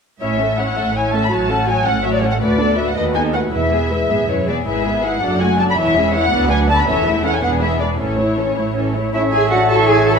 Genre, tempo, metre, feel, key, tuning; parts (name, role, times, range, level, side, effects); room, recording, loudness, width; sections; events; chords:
quick classical-period movement for symphony orchestra; 108 BPM (dotted quarters); 6/8; rubato; A major; A4 = 436 Hz
muted studio violin section; melody; 0.2-10.2 s; C#5 to C#6; -20 LUFS; left 2 dB
muted studio violin section; second line; 0.2-10.2 s; C#4 to B5; -23 LUFS; left 2 dB
muted studio viola section; accompaniment; 0.2-10.2 s; D3 to G#4; -21 LUFS; left 1 dB
muted studio cello section; bass; 0.2-10.2 s; D2 to A4; -22 LUFS; right 3 dB
muted studio double bass section; bass; 0.2-10.2 s; E1 to D#2; -23 LUFS; right 2 dB
bright oboe; second line; 9.1-10.2 s; E5; -25 LUFS; right 3 dB
mellow clarinet; second line; 9.1-10.2 s; C#5; -25 LUFS; left 2 dB
mellow hollow small flute group; second line; 9.1-10.2 s; E5 to A5; -21 LUFS; left 4 dB
warm bassoon; accompaniment; 9.1-10.2 s; A3; -22 LUFS; right 1 dB
mellow French horn section; sustained chords; 9.1-10.2 s; C#4 to F#4; -22 LUFS; left 3 dB
wet scoring stage reverb, RT60 1.7 s; minimal, uncompressed stereo recording; -14 LUFS; side -6 dB against mid
0.2-9.1 A section; 9.1-10.2 B section
0.2 A; 1.3 F#m/A; 2.4 Bm7/D; 3.0 B7/D#; 3.5 E; 4.7 E/G#; 5.2 D/F#; 5.8 C#m/E; 6.3 Bm/D; 6.9 A/E; 7.4 E7; 8.0 A